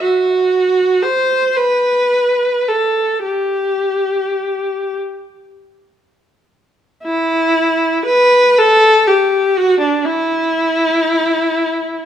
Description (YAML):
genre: classical, free, expressive piece for unaccompanied viola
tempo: 24-44 BPM (dotted quarters)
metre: 6/8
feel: rubato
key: E minor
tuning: A4 = 440 Hz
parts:
  - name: rich viola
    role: solo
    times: 0.0-12.1 s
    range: D4 to C5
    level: -12 LUFS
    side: equal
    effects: none
room: light reverb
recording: minimal, uncompressed stereo recording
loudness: -12 LUFS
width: side -9 dB against mid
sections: 0.0-7.0 A section; 7.0-12.1 B section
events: none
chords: none